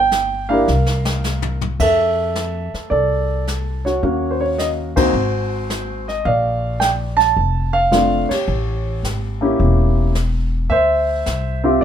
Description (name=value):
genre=jazz piano trio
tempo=108 BPM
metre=4/4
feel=swing 69% on 8ths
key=F major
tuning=A4 = 439 Hz
part: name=dark concert grand piano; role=melody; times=0.0-11.8 s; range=A3 to A5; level=-17 LUFS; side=right 1 dB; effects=none
part: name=upright bass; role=bass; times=0.0-11.8 s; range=E1 to F2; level=-21 LUFS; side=left 1 dB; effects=none
part: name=jazz brush drum kit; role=drums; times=0.1-11.8 s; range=brushed snare drum, crash cymbal, hi-hat, kick drum, ride cymbal, snare drum, toms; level=-26 LUFS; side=left 3 dB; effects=none
room=light reverb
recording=minimal, uncompressed stereo recording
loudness=-16 LUFS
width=side -9 dB against mid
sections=0.0-1.8 A section; 1.8-11.8 B section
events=drum fill 0.7-1.8; band accent 4.9, 8.2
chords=0.0 Gm7; 0.7 C7sus4; 1.8 F6; 4.0 Ebm7; 5.1 Ab7; 6.3 Bbmaj7; 8.5 A7b9; 10.7 D7sus2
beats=0.12 0.68 1.24 | 1.80 2.35 2.91 3.47 | 4.03 4.58 5.14 5.70 | 6.26 6.81 7.37 7.93 | 8.48 9.04 9.60 10.15 | 10.71 11.27 11.82